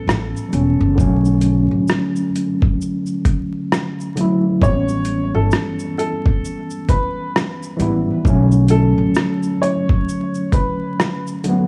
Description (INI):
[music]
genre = lo-fi hip hop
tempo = 66 BPM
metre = 4/4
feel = swing 59% on 16ths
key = B minor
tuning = A4 = 440 Hz
[part]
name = warm upright piano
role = melody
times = 0.0-11.2 s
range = A4 to C#5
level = -27 LUFS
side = equal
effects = tape echo
[part]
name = tine electric piano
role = accompaniment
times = 0.0-11.7 s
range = D3 to E4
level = -21 LUFS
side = equal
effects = overdrive
[part]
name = upright bass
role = bass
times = 0.0-9.1 s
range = E1 to B1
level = -21 LUFS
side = equal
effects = none
[part]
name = dusty soul sampler-style drum kit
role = drums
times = 0.1-11.7 s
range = hi-hat, kick drum, rim click, shaker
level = -20 LUFS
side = equal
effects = overdrive
[sound]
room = little or no reverb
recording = dry, gritty hardware recording, vinyl crackle, small room ambience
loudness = -18 LUFS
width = mono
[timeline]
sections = 1.0-11.7 A section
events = none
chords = 0.0 A7; 1.0 Bm9; 4.6 A7; 8.3 Bm9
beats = 0.07 | 0.98 1.89 2.80 3.71 | 4.62 5.53 6.43 7.34 | 8.25 9.16 10.07 10.98